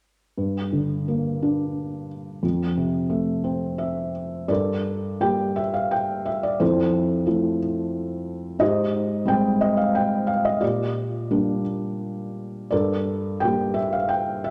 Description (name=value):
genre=classical, lyrical solo piano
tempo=83-92 BPM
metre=3/4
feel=rubato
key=G dorian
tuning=A4 = 440 Hz
part: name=felt-muted upright piano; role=solo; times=0.4-14.5 s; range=F2 to G5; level=-24 LUFS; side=equal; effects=none
room=wet recital hall reverb, RT60 1.8 s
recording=none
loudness=-24 LUFS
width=mono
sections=0.4-4.5 A section; 4.5-14.5 B section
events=felt piano fill 3.4-4.5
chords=0.4 Gm; 2.4 Fmaj7; 4.5 Gmadd9; 6.6 Fmaj7; 8.6 Abmaj7; 10.6 Bb6; 12.7 Gmadd9